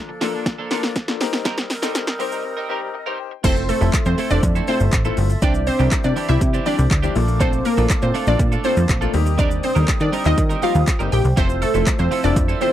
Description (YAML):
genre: dance-pop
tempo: 121 BPM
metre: 4/4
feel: straight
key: F major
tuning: A4 = 440 Hz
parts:
  - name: warm grand piano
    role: accompaniment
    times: 0.0-12.7 s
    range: F3 to G5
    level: -28 LUFS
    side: left 14 dB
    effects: sidechain pumping
  - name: warm woodwind section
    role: sustained chords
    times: 0.0-12.7 s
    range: F3 to E6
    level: -30 LUFS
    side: right 2 dB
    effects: sidechain pumping
  - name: twelve-string electric guitar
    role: riff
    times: 0.1-12.7 s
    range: E3 to Bb4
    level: -27 LUFS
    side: right 6 dB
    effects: wide subtle chorus
  - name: deep house drum kit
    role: drums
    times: 0.2-12.7 s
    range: crash cymbal, handclaps, hi-hat, kick drum, shaker, snare drum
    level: -21 LUFS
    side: equal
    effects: overdrive
  - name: glassy wavetable pluck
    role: melody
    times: 3.4-12.7 s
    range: A3 to G5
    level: -22 LUFS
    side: equal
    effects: chorus, sidechain pumping, slapback echo
  - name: plucky analog bass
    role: bass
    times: 3.4-12.5 s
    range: F1 to Eb3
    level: -19 LUFS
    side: equal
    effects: sidechain pumping
room: little or no reverb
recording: dry, close 1970s-style studio recording, high-pass filter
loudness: -16 LUFS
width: side -12 dB against mid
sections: 0.0-3.4 A section; 3.4-12.7 B section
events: build-up 0.0-3.4; drum fill 0.0-2.4; break 2.4-3.4; grand piano fill 2.7-3.4; drop 3.4-12.7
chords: 0.0 Bbmaj7; 1.2 Eb6; 3.4 Fmaj7; 5.4 Cadd9; 7.2 Bbmaj7; 9.1 Eb6; 11.4 Fmaj7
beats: 0.46 0.96 | 1.46 1.95 2.45 2.94 | 3.44 3.94 4.43 4.93 | 5.42 5.92 6.41 6.91 | 7.41 7.90 8.40 8.89 | 9.39 9.88 10.38 10.88 | 11.37 11.87 12.37